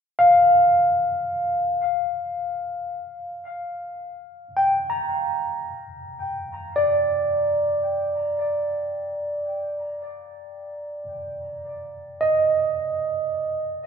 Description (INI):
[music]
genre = ambient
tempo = free time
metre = none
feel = none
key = C minor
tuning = A4 = 440 Hz
[part]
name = overdriven tine electric piano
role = solo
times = 0.2-13.9 s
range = D5 to Bb5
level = -21 LUFS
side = equal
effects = lush chorus, diffuse ambient delay
[sound]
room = wet scoring stage reverb, RT60 2.1 s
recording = dark, warm production, nothing above 7.6 kHz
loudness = -20 LUFS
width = side -7 dB against mid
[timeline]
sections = 0.0-5.7 A section; 5.7-13.9 B section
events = none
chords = 0.0 Gm7; 5.7 Cm9 (rootless)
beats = free time